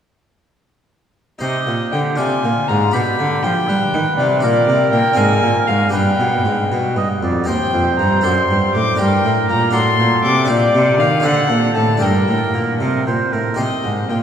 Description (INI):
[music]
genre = classical, baroque-style sonata movement with continuo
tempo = 79 BPM (dotted quarters)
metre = 6/8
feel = rubato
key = G minor from 7.5 s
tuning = A4 = 440 Hz
[part]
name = warm violin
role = melody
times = 1.4-14.2 s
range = D5 to D6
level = -19 LUFS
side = left 3 dB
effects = none
[part]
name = warm oboe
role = second line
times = 1.4-13.6 s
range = F4 to Eb5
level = -22 LUFS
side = right 4 dB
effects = none
[part]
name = harpsichord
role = accompaniment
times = 1.4-14.2 s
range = Eb2 to D5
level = -21 LUFS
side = left 1 dB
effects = none
[part]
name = rich cello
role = bass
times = 1.4-14.2 s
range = Eb2 to G3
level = -18 LUFS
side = right 1 dB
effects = none
[sound]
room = wet cathedral reverb, RT60 4.8 s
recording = recorded in a church or concert hall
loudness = -14 LUFS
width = side -8 dB against mid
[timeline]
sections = 1.4-13.6 A section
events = none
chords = 1.4 Cm; 2.2 Dm7b5; 2.9 G/B; 4.4 Bb69; 5.2 Fm/Ab; 5.9 G; 7.5 Cm/Eb; 8.2 D7/F#; 9.0 Gm; 9.7 D7/A; 10.5 Gm/Bb; 11.3 D7; 12.0 Gm; 13.6 Cm